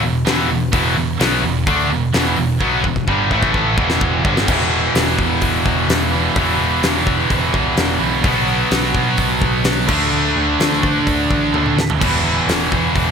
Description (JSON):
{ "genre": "hard rock", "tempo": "128 BPM", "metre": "4/4", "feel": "straight", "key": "E minor", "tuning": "A4 = 440 Hz", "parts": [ { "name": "distorted electric guitar", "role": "riff", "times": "0.0-13.1 s", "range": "E2 to D4", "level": "-21 LUFS", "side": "left 13 dB", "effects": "distortion" }, { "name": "high-gain distorted guitar", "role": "riff", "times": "0.0-13.1 s", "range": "E2 to D4", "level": "-22 LUFS", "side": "equal", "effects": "distortion" }, { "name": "scooped high-gain guitar", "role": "riff", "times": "0.0-13.1 s", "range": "E2 to D4", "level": "-20 LUFS", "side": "right 10 dB", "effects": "distortion" }, { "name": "overdriven picked electric bass", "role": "bass", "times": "0.0-13.1 s", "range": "E1 to B2", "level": "-23 LUFS", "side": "left 1 dB", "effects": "none" }, { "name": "huge arena drum kit", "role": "drums", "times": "0.3-13.1 s", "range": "crash cymbal, hi-hat, kick drum, snare drum, toms", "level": "-20 LUFS", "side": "equal", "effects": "none" } ], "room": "light reverb", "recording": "none", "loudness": "-14 LUFS", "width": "side -6 dB against mid", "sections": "0.0-4.5 A section; 4.5-13.1 B section", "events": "drum fill 2.6-4.5, 11.5-12.0", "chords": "0.0 Em; 3.3 A5; 3.8 Em; 4.5 E5; 8.3 B5; 9.9 D5; 12.0 E5" }